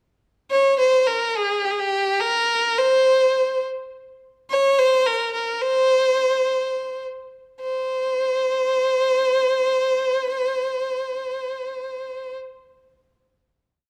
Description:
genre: Turkish makam ensemble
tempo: free time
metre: none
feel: none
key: unclear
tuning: A4 = 438 Hz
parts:
  - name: rich violin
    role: solo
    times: 0.5-12.3 s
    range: G4 to Db5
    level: -21 LUFS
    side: equal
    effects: none
room: moderate recital hall reverb, RT60 1.5 s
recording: dark, warm production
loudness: -21 LUFS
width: mono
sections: 0.0-7.6 A section; 7.6-11.6 final note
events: none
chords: none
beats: free time

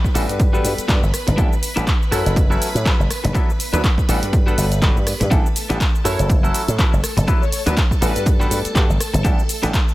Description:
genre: filtered disco house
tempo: 122 BPM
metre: 4/4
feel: swing 57% on 16ths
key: unclear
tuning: A4 = 440 Hz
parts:
  - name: string machine, full ensemble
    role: sustained chords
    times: 0.0-9.9 s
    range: A4 to B5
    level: -31 LUFS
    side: equal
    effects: ensemble chorus, sidechain pumping, low-pass filter
  - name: clean electric guitar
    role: riff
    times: 0.0-9.9 s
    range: D4 to D5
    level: -28 LUFS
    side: left 1 dB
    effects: sidechain pumping, low-pass filter
  - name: electronic kick drum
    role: drums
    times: 0.0-9.9 s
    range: none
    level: -17 LUFS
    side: equal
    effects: none
  - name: egg shaker and congas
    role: percussion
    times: 0.0-9.9 s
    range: none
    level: -28 LUFS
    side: left 1 dB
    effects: sidechain pumping on perc, low-pass filter on perc
  - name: clav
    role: accompaniment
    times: 0.1-9.7 s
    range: F#3 to F#5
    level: -26 LUFS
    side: left 1 dB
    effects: phaser, sidechain pumping, low-pass filter
  - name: slap bass with an envelope filter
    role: bass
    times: 0.1-9.7 s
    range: F#1 to A2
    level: -20 LUFS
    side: equal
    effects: sidechain pumping, low-pass filter
  - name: punchy analog drum machine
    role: drums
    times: 0.1-9.9 s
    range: handclaps, hi-hat, rim click, shaker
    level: -25 LUFS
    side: equal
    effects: sidechain pumping on hats, sidechain pumping on cymbals, sidechain pumping on perc
  - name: analog synth brass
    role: melody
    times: 6.1-8.3 s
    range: B4 to C#5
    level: -29 LUFS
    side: left 2 dB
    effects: chorus, sidechain pumping, low-pass filter, digital delay
room: digital ambience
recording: none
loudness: -15 LUFS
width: side -17 dB against mid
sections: 0.0-9.9 A section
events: none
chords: 0.4 Gmaj7; 1.4 A7sus4; 2.1 F#m7; 3.3 D6; 4.3 Gmaj7; 5.3 A7sus4; 6.1 F#m7; 7.3 D6; 8.3 Gmaj7; 9.2 A7sus4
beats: 0.40 0.89 | 1.38 1.87 2.36 2.86 | 3.35 3.84 4.33 4.82 | 5.32 5.81 6.30 6.79 | 7.28 7.77 8.27 8.76 | 9.25 9.74

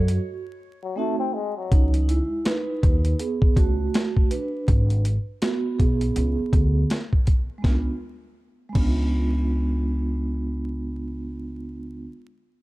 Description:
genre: hip hop, jazz-hop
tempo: 81 BPM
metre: 4/4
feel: swing 61% on 16ths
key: unclear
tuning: A4 = 440 Hz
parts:
  - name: vibraphone with soft mallets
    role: accompaniment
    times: 0.0-12.1 s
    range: F#3 to B4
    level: -28 LUFS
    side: right 3 dB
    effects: none
  - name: upright bass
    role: bass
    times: 0.0-12.1 s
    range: G#1 to F#2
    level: -24 LUFS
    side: equal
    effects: none
  - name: boom bap sampler-style drum kit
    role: drums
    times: 0.1-9.0 s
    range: crash cymbal, hi-hat, kick drum, snare drum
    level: -20 LUFS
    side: equal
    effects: none
  - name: trombone with cup mute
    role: second line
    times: 0.8-1.9 s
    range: F#3 to C4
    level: -28 LUFS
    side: left 7 dB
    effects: none
room: small room reverb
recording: dark, warm production, vinyl crackle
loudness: -21 LUFS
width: side -18 dB against mid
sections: 0.0-1.7 A section; 1.7-7.6 B section; 7.6-10.6 C section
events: break 0.2-1.7; vibraphone solo 1.7-7.6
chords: 0.2 F#dim7; 1.7 C#9sus4; 4.7 G#dim; 6.2 N.C.; 7.6 C#7b9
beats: 0.23 0.97 | 1.71 2.46 3.19 3.94 | 4.68 5.42 6.16 6.90 | 7.64 8.38 9.12 9.86

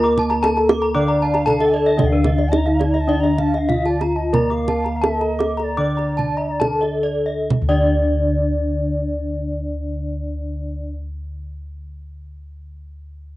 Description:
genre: Balinese gamelan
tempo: 64-116 BPM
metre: 4/4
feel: straight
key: D pelog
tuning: A4 = 440 Hz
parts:
  - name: gamelan-type bronze metallophone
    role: melody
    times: 0.0-10.9 s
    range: D4 to D5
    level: -22 LUFS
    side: left 1 dB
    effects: cassette tape, plate reverb
  - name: gamelan-type bronze metallophone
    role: accompaniment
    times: 0.0-10.9 s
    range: D3 to D4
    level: -27 LUFS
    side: right 1 dB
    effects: cassette tape, plate reverb
  - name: gamelan-type bronze metallophone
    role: arpeggios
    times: 0.0-10.9 s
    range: Bb4 to D6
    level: -24 LUFS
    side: left 2 dB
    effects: cassette tape, plate reverb
  - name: gamelan-type bossed gongs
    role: bass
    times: 0.0-10.8 s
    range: D2 to Bb4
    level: -23 LUFS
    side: equal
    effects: none
  - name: kendang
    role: percussion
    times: 0.0-7.9 s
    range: none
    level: -21 LUFS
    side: right 3 dB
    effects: none
  - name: gamelan-type bronze metallophone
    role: arpeggios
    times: 0.2-10.9 s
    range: D5 to D6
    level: -28 LUFS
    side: right 4 dB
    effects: cassette tape, plate reverb
  - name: bright reedy bansuri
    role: second line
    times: 1.0-7.0 s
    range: Bb4 to Bb5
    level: -30 LUFS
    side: right 3 dB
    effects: cassette tape, plate reverb
room: moderate booth ambience, RT60 0.3 s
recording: home recording on cassette, nothing above 10.5 kHz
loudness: -17 LUFS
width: side -17 dB against mid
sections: 0.0-7.5 A section; 7.5-13.4 B section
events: slowing down 2.0-7.5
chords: none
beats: 0.43 0.95 1.47 | 1.99 2.52 3.08 3.69 | 4.33 5.02 5.77 6.59 | 7.49 8.43 9.37 10.31

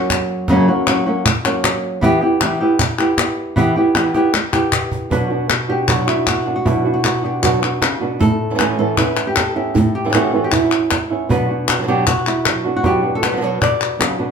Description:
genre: flamenco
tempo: 155 BPM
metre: 4/4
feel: straight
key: B minor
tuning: A4 = 438 Hz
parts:
  - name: flamenco guitar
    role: melody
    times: 0.0-14.3 s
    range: F#2 to D5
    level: -17 LUFS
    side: equal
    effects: none
  - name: cajon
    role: percussion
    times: 0.1-14.2 s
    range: none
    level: -23 LUFS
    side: right 2 dB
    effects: none
  - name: palmas hand claps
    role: percussion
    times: 0.1-14.2 s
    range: none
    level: -20 LUFS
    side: left 6 dB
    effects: none
  - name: flamenco guitar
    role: stabs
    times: 5.1-14.3 s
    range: A2 to F#4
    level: -20 LUFS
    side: right 4 dB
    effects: none
room: wet large studio reverb, RT60 0.9 s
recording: band playing live in one room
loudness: -14 LUFS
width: side -6 dB against mid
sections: 0.0-5.1 A section; 5.1-14.3 B section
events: drum fill 4.1-5.1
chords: 0.0 F#; 2.0 Em; 5.1 Bm; 8.2 Aadd9; 11.3 Bm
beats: 0.10 | 0.48 0.87 1.25 1.64 | 2.02 2.41 2.79 3.18 | 3.56 3.95 4.33 4.72 | 5.11 5.49 5.88 6.27 | 6.65 7.04 7.43 7.81 | 8.20 8.59 8.97 9.36 | 9.75 10.14 10.52 10.91 | 11.30 11.68 12.07 12.46 | 12.84 13.23 13.62 14.00

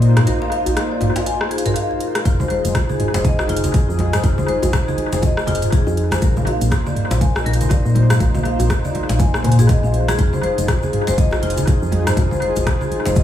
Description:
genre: afro house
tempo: 121 BPM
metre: 4/4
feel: swing 59% on 16ths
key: F minor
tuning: A4 = 440 Hz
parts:
  - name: warm analog pad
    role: sustained chords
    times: 0.0-13.2 s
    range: Bb3 to C5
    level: -25 LUFS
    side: equal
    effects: chorus, sidechain pumping
  - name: woody FM bass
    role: bass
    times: 0.0-13.2 s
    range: F1 to Bb2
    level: -19 LUFS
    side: left 1 dB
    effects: sidechain pumping
  - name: afro-pop drum kit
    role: drums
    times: 0.0-13.2 s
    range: hi-hat, rim click, toms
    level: -24 LUFS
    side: right 1 dB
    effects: analog delay
  - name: djembe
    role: percussion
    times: 0.0-13.2 s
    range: none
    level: -27 LUFS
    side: left 2 dB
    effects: analog delay
  - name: marimba with medium mallets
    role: arpeggios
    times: 0.2-13.2 s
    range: F4 to Ab5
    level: -24 LUFS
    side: left 2 dB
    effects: vintage 12-bit sampler grit, sidechain pumping, analog delay
  - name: electronic kick drum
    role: drums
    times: 2.3-13.2 s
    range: none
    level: -18 LUFS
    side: equal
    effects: none
  - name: egg shaker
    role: percussion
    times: 2.3-13.2 s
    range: none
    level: -37 LUFS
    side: left 4 dB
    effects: none
  - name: congas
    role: percussion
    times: 2.4-13.1 s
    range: none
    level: -25 LUFS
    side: right 2 dB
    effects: analog delay
room: light reverb, small room ambience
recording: echo-heavy mix, studio reverb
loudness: -15 LUFS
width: side -11 dB against mid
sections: 0.0-13.2 A section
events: break 0.3-2.3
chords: 0.0 Bbsus4; 2.3 Fm7; 6.2 Bb7sus4; 10.2 Fm7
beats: | 0.27 0.77 1.26 1.76 | 2.25 2.75 3.25 3.74 | 4.24 4.73 5.23 5.72 | 6.22 6.72 7.21 7.71 | 8.20 8.70 9.20 9.69 | 10.19 10.68 11.18 11.68 | 12.17 12.67 13.16

